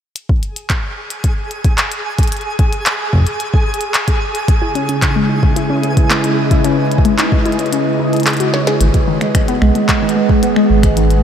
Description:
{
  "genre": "IDM",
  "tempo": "111 BPM",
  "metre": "4/4",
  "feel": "straight",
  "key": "G# minor",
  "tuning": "A4 = 443 Hz",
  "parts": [
    { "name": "glitchy drum kit", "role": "drums", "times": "0.2-11.2 s", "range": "finger snaps, handclaps, hi-hat, snare drum", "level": "-20 LUFS", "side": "equal", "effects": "small room reverb, tape echo" },
    { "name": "twinkling granular texture", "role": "texture", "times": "1.0-8.8 s", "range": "G#4 to G#5", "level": "-25 LUFS", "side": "right 1 dB", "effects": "built-in reverb" },
    { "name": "electronic kick drum", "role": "drums", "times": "0.3-10.9 s", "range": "none", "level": "-14 LUFS", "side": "equal", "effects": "small room reverb" },
    { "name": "warbly tape-like pad", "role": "sustained chords", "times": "4.7-11.2 s", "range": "C#3 to F#5", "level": "-17 LUFS", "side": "right 1 dB", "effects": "chorus, built-in reverb" },
    { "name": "warbly dusty pluck", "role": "arpeggios", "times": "4.6-11.2 s", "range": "D#3 to C#5", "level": "-17 LUFS", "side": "left 1 dB", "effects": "chorus, phaser, tape echo" },
    { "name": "round analog bass", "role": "bass", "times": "8.8-11.2 s", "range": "G#1 to B1", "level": "-12 LUFS", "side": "equal", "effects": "none" }
  ],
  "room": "wet huge ambient reverb, RT60 8.7 s",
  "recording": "dreamy mix soaked in reverb",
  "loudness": "-12 LUFS",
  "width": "side -8 dB against mid",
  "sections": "0.2-8.8 A section; 8.8-11.2 B section",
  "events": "kick drops out 7.7-8.8; drum fill 8.5",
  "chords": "0.2 N.C.; 4.2 C#m7; 8.8 G#m7",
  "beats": "| 0.16 0.70 1.24 1.78 | 2.32 2.86 3.40 3.94 | 4.48 5.02 5.57 6.11 | 6.65 7.19 7.73 8.27 | 8.81 9.35 9.89 10.43 | 10.97"
}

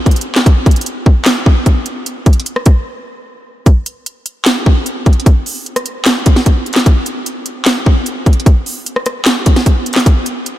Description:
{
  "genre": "hip hop",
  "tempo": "150 BPM",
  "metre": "4/4",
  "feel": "half-time",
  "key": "none",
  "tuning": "none",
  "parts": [
    { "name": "trap drum kit", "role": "drums", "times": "0.1-10.6 s", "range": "handclaps, hi-hat, kick drum, rim click, snare drum", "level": "-10 LUFS", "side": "equal", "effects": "none" }
  ],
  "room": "light reverb",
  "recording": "none",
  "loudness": "-10 LUFS",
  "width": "side -14 dB against mid",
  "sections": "0.0-3.7 A section; 3.7-10.6 B section",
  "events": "break 2.9-3.7",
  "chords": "none",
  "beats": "0.06 | 0.46 0.86 1.26 1.66 | 2.06 2.46 2.86 3.26 | 3.66 4.06 4.46 4.86 | 5.26 5.66 6.06 6.46 | 6.86 7.26 7.66 8.06 | 8.46 8.86 9.26 9.66 | 10.06 10.46"
}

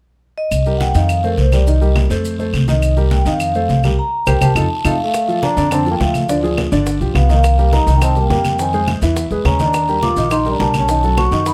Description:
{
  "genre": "Afro-Cuban jazz",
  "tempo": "208 BPM",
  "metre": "4/4",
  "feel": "straight",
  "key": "unclear",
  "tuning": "A4 = 440 Hz",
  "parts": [
    { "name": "vibraphone with soft mallets", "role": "melody", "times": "0.4-11.5 s", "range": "Bb4 to D6", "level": "-21 LUFS", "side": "equal", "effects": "none" },
    { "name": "upright bass", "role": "bass", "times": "0.5-11.5 s", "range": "G1 to F#2", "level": "-19 LUFS", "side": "equal", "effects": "none" },
    { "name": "claves", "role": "percussion", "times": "0.5-11.3 s", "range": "none", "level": "-28 LUFS", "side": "equal", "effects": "none" },
    { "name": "congas", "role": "percussion", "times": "0.5-11.5 s", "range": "none", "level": "-26 LUFS", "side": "equal", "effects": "none" },
    { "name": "guiro", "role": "percussion", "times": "0.5-11.5 s", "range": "none", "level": "-36 LUFS", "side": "equal", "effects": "none" },
    { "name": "maracas", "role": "percussion", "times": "0.5-11.5 s", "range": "none", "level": "-37 LUFS", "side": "equal", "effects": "none" },
    { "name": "warm concert grand piano", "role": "accompaniment", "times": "0.7-11.5 s", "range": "D3 to E5", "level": "-23 LUFS", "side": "equal", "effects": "none" },
    { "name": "clear trombone", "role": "second line", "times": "4.8-11.5 s", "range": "F3 to F#4", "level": "-26 LUFS", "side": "equal", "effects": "none" },
    { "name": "bongos", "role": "percussion", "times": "5.1-11.5 s", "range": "none", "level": "-32 LUFS", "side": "equal", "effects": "none" }
  ],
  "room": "light reverb",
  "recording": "close, detailed microphones, faint mains hum",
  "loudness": "-15 LUFS",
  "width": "mono",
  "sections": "0.5-5.1 A section; 5.1-11.5 B section",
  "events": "band accent 4.0-5.1; drum fill 4.4-5.1",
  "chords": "0.0 N.C.; 0.5 Cm7; 2.2 F7; 2.8 Cm7; 3.4 F7; 4.0 C5; 4.6 F7; 5.1 Bbmaj7; 6.3 Ddim; 6.9 G7; 7.4 Cm7; 8.6 Fm7; 9.2 E; 9.7 Ebmaj9; 10.9 B9",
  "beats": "0.23 | 0.52 0.80 1.09 1.38 | 1.67 1.96 2.25 2.54 | 2.83 3.11 3.40 3.69 | 3.98 4.27 4.56 4.84 | 5.13 5.42 5.71 6.00 | 6.29 6.58 6.86 7.15 | 7.44 7.73 8.01 8.30 | 8.59 8.88 9.16 9.45 | 9.74 10.03 10.31 10.60 | 10.89 11.18 11.46"
}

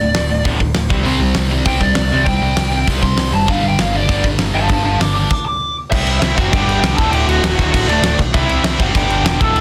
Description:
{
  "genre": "punk rock",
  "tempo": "198 BPM",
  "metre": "4/4",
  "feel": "straight",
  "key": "unclear",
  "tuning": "A4 = 440 Hz",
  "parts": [
    { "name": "biting lead guitar", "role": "melody", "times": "0.0-9.6 s", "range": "D4 to D6", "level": "-21 LUFS", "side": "equal", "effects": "overdrive" },
    { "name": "distorted electric guitar", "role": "riff", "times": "0.0-9.6 s", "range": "D2 to C4", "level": "-22 LUFS", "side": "equal", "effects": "distortion" },
    { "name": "overdriven picked electric bass", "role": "bass", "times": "0.0-9.6 s", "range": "D1 to C2", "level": "-22 LUFS", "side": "equal", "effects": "none" },
    { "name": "big rock drum kit", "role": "drums", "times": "0.1-9.6 s", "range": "crash cymbal, hi-hat, kick drum, snare drum", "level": "-20 LUFS", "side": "equal", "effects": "none" },
    { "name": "fuzz guitar", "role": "riff", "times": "1.0-5.3 s", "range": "G2 to C4", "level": "-24 LUFS", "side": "equal", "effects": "distortion" }
  ],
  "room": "little or no reverb",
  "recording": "dense, heavily limited modern master",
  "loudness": "-15 LUFS",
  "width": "mono",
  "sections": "0.0-5.9 A section; 5.9-9.6 B section",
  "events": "lead electric guitar solo 0.0-5.9; stop 5.3-5.9",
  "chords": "0.0 D5; 0.9 C5; 3.5 G5; 5.9 C; 6.5 G5; 7.0 D; 8.3 C; 8.9 G5",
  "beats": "0.15 0.46 0.76 | 1.07 1.37 1.67 1.98 | 2.28 2.58 2.89 3.19 | 3.50 3.80 4.10 4.41 | 4.71 5.01 5.32 5.62 | 5.92 6.22 6.53 6.83 | 7.13 7.44 7.74 8.04 | 8.34 8.65 8.95 9.25 | 9.55"
}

